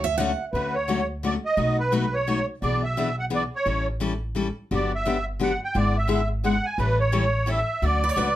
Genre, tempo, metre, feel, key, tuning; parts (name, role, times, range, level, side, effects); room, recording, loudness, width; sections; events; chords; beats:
acoustic string swing (jazz manouche); 173 BPM; 3/4; swing 60% on 8ths; D major; A4 = 440 Hz
picked steel-string acoustic guitar; second line; 0.0-0.4, 8.0-8.4 s; B4 to F#5; -28 LUFS; right 5 dB
upright bass; bass; 0.0-8.4 s; G1 to D2; -27 LUFS; equal
picked steel-string acoustic guitar; accompaniment; 0.2-8.3 s; B2 to A4; -27 LUFS; left 4 dB
musette accordion; melody; 0.5-8.4 s; B4 to G#5; -25 LUFS; right 2 dB
moderate studio ambience, RT60 0.5 s; -22 LUFS; side -13 dB against mid
0.5-8.4 A section
0.0 Dmaj7; 1.6 B7; 2.6 E7/B; 3.7 A7; 4.7 Gmaj7; 5.7 E7/G#; 6.8 A7; 7.8 Dmaj7
0.20 | 0.54 0.89 1.24 | 1.58 1.93 2.28 | 2.62 2.97 3.32 | 3.66 4.01 4.36 | 4.70 5.05 5.40 | 5.74 6.09 6.44 | 6.78 7.13 7.48 | 7.82 8.17